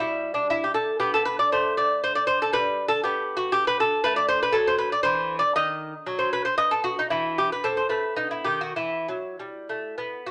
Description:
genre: classical, baroque-style dance for lute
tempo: 96-121 BPM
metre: 3/4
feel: rubato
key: E minor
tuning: A4 = 439 Hz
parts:
  - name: lute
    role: solo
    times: 0.0-10.3 s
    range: D#3 to D#5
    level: -25 LUFS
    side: equal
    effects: none
room: moderate studio reverb, RT60 0.9 s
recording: none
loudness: -24 LUFS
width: mono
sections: 0.0-10.3 A section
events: none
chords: 0.0 Em; 1.0 Amadd9; 2.5 G; 4.0 A5; 5.6 B/D#; 7.1 N.C.; 7.6 Amadd9; 8.2 B; 8.8 Em

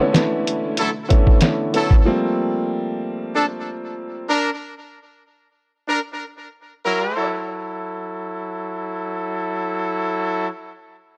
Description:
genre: hip hop, boom-bap hip-hop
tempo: 94 BPM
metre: 4/4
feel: swing 55% on 16ths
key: unclear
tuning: A4 = 440 Hz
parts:
  - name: warm upright piano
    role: accompaniment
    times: 0.0-4.3 s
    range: D3 to C#4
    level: -24 LUFS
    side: equal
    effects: high-pass filter, low-pass filter
  - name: dark studio string section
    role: sustained chords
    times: 0.0-2.0 s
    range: B2 to E4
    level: -37 LUFS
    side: equal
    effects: none
  - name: lo-fi sampler-style drum kit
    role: drums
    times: 0.1-2.0 s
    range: hi-hat, kick drum, snare drum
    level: -17 LUFS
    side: equal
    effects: none
  - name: clear trumpet section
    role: stabs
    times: 0.8-10.5 s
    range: F#3 to Bb4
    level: -25 LUFS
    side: equal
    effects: high-pass filter, low-pass filter, delay
room: light reverb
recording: none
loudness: -22 LUFS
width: mono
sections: 0.0-7.2 A section; 7.2-9.7 B section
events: none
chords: 0.0 Bm11; 2.1 Gm11; 7.2 F#m7

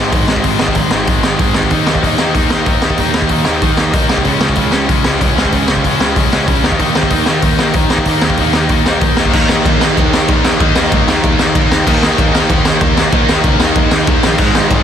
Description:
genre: punk rock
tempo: 189 BPM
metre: 4/4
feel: straight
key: unclear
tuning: A4 = 440 Hz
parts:
  - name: distorted electric guitar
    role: riff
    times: 0.0-14.8 s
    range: Ab2 to Eb4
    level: -17 LUFS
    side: left 16 dB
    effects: overdrive
  - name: sludgy distorted guitar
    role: riff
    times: 0.0-14.8 s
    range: Ab2 to Eb4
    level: -18 LUFS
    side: right 13 dB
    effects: overdrive
  - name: fuzz picked electric bass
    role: bass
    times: 0.0-14.8 s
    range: Ab1 to Eb2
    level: -20 LUFS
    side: equal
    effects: overdrive
  - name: raw garage drum kit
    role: drums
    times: 0.1-14.8 s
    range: crash cymbal, hi-hat, kick drum, ride cymbal, snare drum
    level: -13 LUFS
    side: equal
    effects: none
  - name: high-gain distorted guitar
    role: riff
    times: 9.3-14.8 s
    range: Ab2 to Eb4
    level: -19 LUFS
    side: equal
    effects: distortion
room: little or no reverb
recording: dense, heavily limited modern master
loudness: -10 LUFS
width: side -9 dB against mid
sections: 0.0-9.3 A section; 9.3-14.8 B section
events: none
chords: 0.0 Ab5; 1.7 Eb5; 4.3 Db5; 6.6 Eb5

